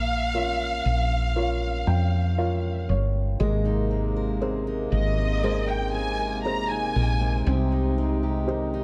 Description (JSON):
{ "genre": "pop", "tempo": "59 BPM", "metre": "4/4", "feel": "straight", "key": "Ab major", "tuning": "A4 = 440 Hz", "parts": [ { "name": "rich studio violin section", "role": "melody", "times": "0.0-7.5 s", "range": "Eb5 to Bb5", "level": "-31 LUFS", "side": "equal", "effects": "none" }, { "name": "felt-muted upright piano", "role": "accompaniment", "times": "0.0-8.8 s", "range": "Ab3 to G5", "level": "-33 LUFS", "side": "equal", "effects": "none" }, { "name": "woody fretless electric bass", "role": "bass", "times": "0.0-8.8 s", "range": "G1 to F2", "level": "-28 LUFS", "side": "equal", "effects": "lush chorus" }, { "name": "pedal harmonium", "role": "sustained chords", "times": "3.4-8.8 s", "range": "C3 to Eb4", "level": "-34 LUFS", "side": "equal", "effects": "none" }, { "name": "fingerpicked steel-string acoustic guitar", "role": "arpeggios", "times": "3.4-8.8 s", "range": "C3 to Bb4", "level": "-35 LUFS", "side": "equal", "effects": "none" } ], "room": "studio ambience", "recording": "dry, close 1970s-style studio recording", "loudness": "-25 LUFS", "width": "mono", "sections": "0.0-8.8 A section", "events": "felt piano fill 1.4-3.4", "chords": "0.0 Bbm; 3.4 Abadd9; 7.5 Cm" }